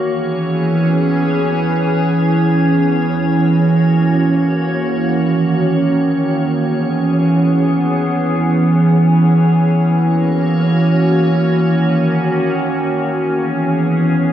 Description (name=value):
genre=hip hop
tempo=free time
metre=none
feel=none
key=C# dorian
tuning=A4 = 440 Hz
part: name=glassy FM pad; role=solo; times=0.0-14.3 s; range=D#3 to C#5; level=-12 LUFS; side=right 1 dB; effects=ensemble chorus, built-in reverb
room=moderate huge ambient reverb, RT60 7.7 s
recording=studio reverb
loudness=-12 LUFS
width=side -10 dB against mid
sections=0.0-13.1 A section; 13.1-14.3 B section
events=none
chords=0.0 C#m7; 3.2 F#7; 4.9 D#m7; 6.5 C#m7; 9.8 F#7; 11.4 D#m7; 13.1 C#m7